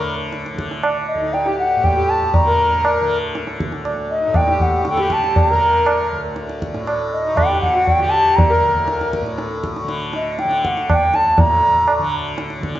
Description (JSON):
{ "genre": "indian classical, Hindustani", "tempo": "119 BPM", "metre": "3/4", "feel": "straight", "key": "unclear", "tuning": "A4 = 440 Hz", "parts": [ { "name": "hand-pumped harmonium", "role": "second line", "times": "0.0-9.2 s", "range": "Eb4 to Bb4", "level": "-23 LUFS", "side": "left 2 dB", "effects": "none" }, { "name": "tanpura", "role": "drone", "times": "0.0-12.8 s", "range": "D2 to D3", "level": "-25 LUFS", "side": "left 1 dB", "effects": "none" }, { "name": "tabla", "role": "percussion", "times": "0.3-12.8 s", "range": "none", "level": "-20 LUFS", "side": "right 1 dB", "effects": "none" }, { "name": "bright bansuri", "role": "melody", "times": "1.1-12.1 s", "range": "Eb5 to Bb5", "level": "-17 LUFS", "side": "equal", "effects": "none" } ], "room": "moderate recital hall reverb, RT60 1.6 s", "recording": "nothing above 7.6 kHz", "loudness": "-15 LUFS", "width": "side -13 dB against mid", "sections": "0.0-11.4 A section; 11.4-12.8 B section", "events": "none", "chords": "none", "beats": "0.32 | 0.83 1.33 1.83 | 2.34 2.84 3.35 | 3.85 4.35 4.86 | 5.36 5.86 6.37 | 6.87 7.37 7.87 | 8.37 8.88 9.38 | 9.88 10.38 10.88 | 11.38 11.88 12.38" }